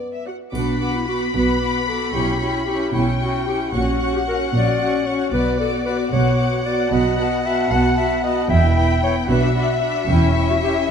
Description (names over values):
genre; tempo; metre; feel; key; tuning
cinematic, playful, whimsical film cue; 75 BPM (dotted quarters); 6/8; straight; B minor; A4 = 440 Hz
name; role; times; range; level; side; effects
warm studio violin section; second line; 0.0-10.9 s; D5 to D6; -29 LUFS; left 1 dB; none
warm studio cello section; bass; 0.0-10.8 s; E2 to B2; -24 LUFS; right 2 dB; none
warm studio violin section; melody; 0.3-10.9 s; D5 to B5; -25 LUFS; left 5 dB; none
warm studio viola section; accompaniment; 0.3-10.9 s; B3 to F#4; -23 LUFS; equal; none
warm clarinet; second line; 0.5-10.8 s; D4 to F#5; -24 LUFS; left 3 dB; none
warm studio double bass section; bass; 0.5-10.8 s; E1 to B1; -23 LUFS; right 2 dB; none
triangle; percussion; 0.6-1.6 s; none; -51 LUFS; left 2 dB; none
room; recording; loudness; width
moderate scoring stage reverb, RT60 1.6 s; dark, warm production; -17 LUFS; side -7 dB against mid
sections
0.6-10.9 A section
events
none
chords
0.0 Bm; 2.2 C#m7b5/B; 3.7 F#/A#; 5.3 Bm; 8.5 Em; 9.3 Bm; 10.1 C#dim/E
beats
| 0.55 1.35 | 2.15 2.95 | 3.75 4.54 | 5.33 6.13 | 6.92 7.72 | 8.51 9.30 | 10.10 10.90